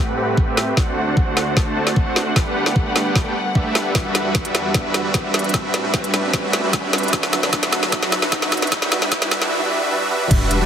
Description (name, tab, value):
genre	future bass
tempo	151 BPM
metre	4/4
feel	half-time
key	unclear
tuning	A4 = 440 Hz
part	clear symphonic string section	sustained chords	0.0-10.7 s	D2 to F#5	-28 LUFS	left 2 dB	sidechain pumping, low-pass filter
part	supersaw chords	riff	0.0-10.7 s	F#3 to A5	-21 LUFS	right 1 dB	sidechain pumping, low-pass filter, dub echo
part	riser	sound effects	0.5-9.5 s	none	-30 LUFS	right 1 dB	none
part	electronic kick drum	drums	0.4-10.4 s	none	-19 LUFS	equal	overdrive
part	trap drum kit	drums	0.6-10.6 s	crash cymbal, hi-hat, snare drum, toms	-21 LUFS	equal	high-pass filter on snare, high-pass filter on toms, high-pass filter on hats, high-pass filter on cymbals
part	saturated sub bass	bass	10.3-10.7 s	E1	-21 LUFS	equal	sidechain pumping
room	moderate huge ambient reverb, RT60 4.2 s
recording	heavily compressed radio sound, high-pass filter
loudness	-16 LUFS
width	side -8 dB against mid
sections	0.0-10.3 A section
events	build-up 0.0-10.3; drum fill 0.0-9.5, 10.0; filter sweep on supersaw synth 0.0-10.3; filter sweep 0.0-10.3; riser 0.5-9.5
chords	0.0 Am9; 0.8 D7; 2.4 Gmaj9/D; 4.0 Em9; 5.5 Am9; 7.1 D7; 8.7 Gmaj7/D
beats	0.37 | 0.77 1.17 1.57 1.96 | 2.36 2.76 3.16 3.55 | 3.95 4.35 4.75 5.14 | 5.54 5.94 6.33 6.73 | 7.13 7.53 7.92 8.32 | 8.72 9.12 9.51 9.91 | 10.31